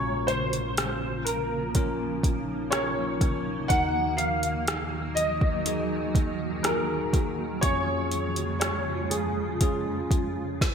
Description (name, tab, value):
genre	pop ballad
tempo	61 BPM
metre	4/4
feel	straight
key	Bb minor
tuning	A4 = 440 Hz
part	warm concert grand piano	melody	0.0-10.7 s	Ab4 to Gb5	-29 LUFS	right 1 dB	ensemble chorus
part	bell-like tine electric piano	accompaniment	0.0-10.6 s	Bb1 to Bb4	-31 LUFS	left 2 dB	phaser
part	granular cloud pad	sustained chords	0.0-10.6 s	F2 to Gb4	-32 LUFS	right 1 dB	built-in reverb, ensemble chorus
part	smooth R&B drum kit	drums	0.3-10.7 s	hi-hat, kick drum, rim click, snare drum	-26 LUFS	equal	gated reverb
room	moderate lush hall reverb, RT60 2.5 s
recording	bright 1980s-style digital production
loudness	-24 LUFS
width	side -7 dB against mid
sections	0.0-10.7 A section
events	none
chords	0.0 Bbm; 3.7 Ebm; 7.6 Db/F